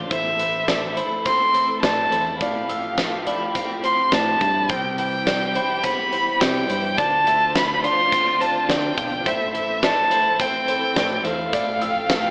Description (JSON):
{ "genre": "post-rock", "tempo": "105 BPM", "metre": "4/4", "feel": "straight", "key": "unclear", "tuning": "A4 = 440 Hz", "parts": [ { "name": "rich studio string section", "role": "sustained chords", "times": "0.0-12.3 s", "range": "C3 to G5", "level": "-31 LUFS", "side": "equal", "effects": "none" }, { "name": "felt-muted upright piano", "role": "arpeggios", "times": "0.0-12.3 s", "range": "C5 to E6", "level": "-29 LUFS", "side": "equal", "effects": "slapback echo" }, { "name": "twelve-string electric guitar", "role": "arpeggios", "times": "0.0-12.3 s", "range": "A2 to F4", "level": "-29 LUFS", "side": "equal", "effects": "tremolo, slapback echo" }, { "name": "modern bright fingered electric bass", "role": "bass", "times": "0.0-12.3 s", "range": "A1 to D3", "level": "-30 LUFS", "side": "equal", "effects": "none" }, { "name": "rich violin", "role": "melody", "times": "0.1-12.3 s", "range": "E5 to C6", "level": "-20 LUFS", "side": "equal", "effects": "slapback echo" }, { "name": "huge arena drum kit", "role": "drums", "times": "0.1-12.2 s", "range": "hi-hat, kick drum, snare drum", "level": "-26 LUFS", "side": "equal", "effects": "none" } ], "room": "light reverb, small room ambience", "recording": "AM radio sound", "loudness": "-18 LUFS", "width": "side -38 dB against mid", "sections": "0.0-12.3 A section", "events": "none", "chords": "0.1 Am; 2.4 Fmaj7/A; 4.7 Cmaj7; 7.0 Dm7; 9.3 Am; 11.5 Fmaj7/A" }